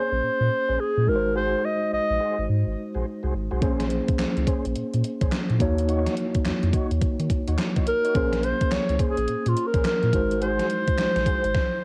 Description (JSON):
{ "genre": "R&B, new jack swing", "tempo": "106 BPM", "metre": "4/4", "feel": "swing 63% on 16ths", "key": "Bb minor", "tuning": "A4 = 442 Hz", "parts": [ { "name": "mellow clarinet", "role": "melody", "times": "0.0-2.5, 7.9-11.8 s", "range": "F4 to Eb5", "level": "-26 LUFS", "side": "equal", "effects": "cassette tape" }, { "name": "mellow tine electric piano", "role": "accompaniment", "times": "0.0-11.6 s", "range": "Ab3 to Db5", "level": "-31 LUFS", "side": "equal", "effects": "cassette tape" }, { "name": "tonewheel organ", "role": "stabs", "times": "0.0-11.4 s", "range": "Db4 to Db5", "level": "-37 LUFS", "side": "equal", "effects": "fast rotary speaker, cassette tape" }, { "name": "round analog bass", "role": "bass", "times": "0.1-11.5 s", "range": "Ab1 to Eb3", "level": "-28 LUFS", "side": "equal", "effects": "none" }, { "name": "gated 80s digital drum machine", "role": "drums", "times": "3.6-11.7 s", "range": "handclaps, hi-hat, kick drum, snare drum", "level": "-28 LUFS", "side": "equal", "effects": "gated reverb, gated reverb snare, overdrive, cassette tape" } ], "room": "little or no reverb", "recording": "home recording on cassette", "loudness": "-24 LUFS", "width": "mono", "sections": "0.0-11.8 A section", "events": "none", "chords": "0.0 Bbm9; 1.1 Ab7; 3.6 Bbm9; 5.6 Ebm7; 8.2 Bbm9; 10.1 Ab7" }